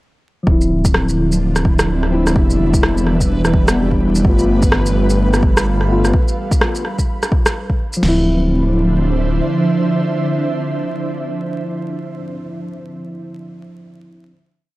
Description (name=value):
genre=future garage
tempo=127 BPM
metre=4/4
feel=swing 60% on 16ths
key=D dorian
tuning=A4 = 440 Hz
part: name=mellow tine electric piano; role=accompaniment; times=0.4-14.3 s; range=F3 to F4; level=-20 LUFS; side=left 1 dB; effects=phaser, sidechain pumping, analog delay
part: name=ethereal airy pad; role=sustained chords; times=1.1-12.5 s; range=D3 to F5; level=-21 LUFS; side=right 1 dB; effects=ensemble chorus, built-in reverb, sidechain pumping
part: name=swelling detuned saw bass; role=bass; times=0.5-9.4 s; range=D1 to G1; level=-17 LUFS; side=equal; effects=sidechain pumping
part: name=deep house drum kit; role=drums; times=0.5-8.2 s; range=crash cymbal, kick drum, snare drum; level=-16 LUFS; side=equal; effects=none
part: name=backwards swelling texture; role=texture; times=1.4-8.0 s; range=B4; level=-31 LUFS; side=right 1 dB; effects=built-in reverb
part: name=electronic shaker and rim click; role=drums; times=0.6-8.0 s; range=none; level=-20 LUFS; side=equal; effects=none
room=light reverb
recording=dry, gritty hardware recording, vinyl crackle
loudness=-13 LUFS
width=side -18 dB against mid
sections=0.5-8.0 groove; 8.0-11.8 final chord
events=none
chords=0.5 Dm9; 2.4 Em7; 4.2 G9; 6.1 N.C.; 8.0 Dm9